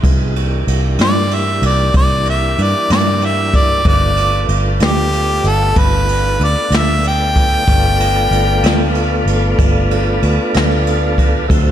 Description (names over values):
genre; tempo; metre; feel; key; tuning
slow blues; 63 BPM (dotted quarters); 12/8; straight; G mixolydian; A4 = 440 Hz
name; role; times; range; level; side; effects
tonewheel organ; sustained chords; 0.0-11.7 s; E3 to E5; -20 LUFS; equal; slow rotary speaker
vintage muted fingered electric bass; bass; 0.0-11.7 s; G1 to G2; -16 LUFS; equal; none
jazz brush drum kit; drums; 0.0-11.7 s; kick drum, ride cymbal, snare drum; -17 LUFS; equal; none
bright harmonica; melody; 1.0-8.9 s; G4 to G5; -17 LUFS; left 1 dB; overdrive, slapback echo
room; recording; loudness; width
light reverb, small room ambience; none; -12 LUFS; side -10 dB against mid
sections
0.0-11.7 A section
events
harmonica solo 0.0-11.7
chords
0.0 C9; 3.9 G9